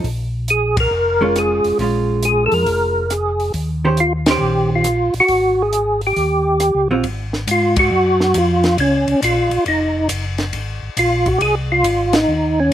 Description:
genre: soul jazz organ trio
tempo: 137 BPM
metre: 4/4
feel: swing 67% on 8ths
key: Ab mixolydian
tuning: A4 = 441 Hz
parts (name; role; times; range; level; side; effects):
- hollow-body jazz guitar; accompaniment; 0.0-7.0 s; Eb3 to C5; -19 LUFS; right 2 dB; none
- mellow tonewheel organ; bass; 0.0-12.7 s; F1 to Ab2; -21 LUFS; left 1 dB; chorus vibrato, slow rotary speaker
- compact cocktail drum kit; drums; 0.0-12.2 s; hi-hat, kick drum, ride cymbal, rim click, snare drum; -24 LUFS; left 1 dB; none
- percussive tonewheel organ; melody; 0.5-12.7 s; Db4 to Bb4; -15 LUFS; equal; slow rotary speaker, chorus vibrato, slapback echo
room: little or no reverb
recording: recorded outdoors, with no room sound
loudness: -14 LUFS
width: side -11 dB against mid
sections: 0.0-7.0 A section; 7.0-12.7 A section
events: band accent 0.7, 4.2, 7.7, 12.1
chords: 0.0 Bbm7; 3.5 Eb6; 5.3 Gbsus2/Ab; 6.2 Eb13; 7.0 Fm/Ab; 8.8 Db69; 10.5 Ab69

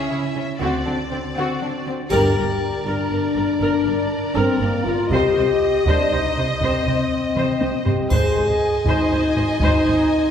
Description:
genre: cinematic, epic orchestral film score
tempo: 120 BPM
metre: 3/4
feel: straight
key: G phrygian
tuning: A4 = 440 Hz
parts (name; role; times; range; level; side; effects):
- rich symphonic violin section; melody; 0.0-10.3 s; D5 to Ab5; -30 LUFS; left 2 dB; none
- warm symphonic violin section; second line; 0.0-10.3 s; C4 to Eb5; -27 LUFS; left 2 dB; none
- clear symphonic viola section; accompaniment; 0.0-9.9 s; C4 to C5; -26 LUFS; right 2 dB; none
- warm French horn section; sustained chords; 0.0-10.3 s; Bb3 to Ab4; -21 LUFS; left 2 dB; none
- rich symphonic cello section; bass; 0.1-9.9 s; G2 to D3; -28 LUFS; right 2 dB; none
- rich symphonic double bass section; bass; 0.6-9.9 s; G1 to D2; -28 LUFS; right 3 dB; none
- taiko ensemble; drums; 2.1-10.1 s; none; -24 LUFS; equal; none
- triangle; percussion; 2.1-3.1, 8.1-9.1 s; none; -40 LUFS; left 1 dB; none
room: wet concert hall reverb, RT60 2.0 s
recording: recorded in a church or concert hall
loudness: -17 LUFS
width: side -8 dB against mid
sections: 0.0-2.1 A section; 2.1-10.3 B section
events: build-up 0.0-2.1; band accent 2.1-2.6; drum fill 7.4-8.1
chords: 0.0 C#m; 0.6 D7; 2.1 Gm; 5.1 Cm; 8.1 Ab

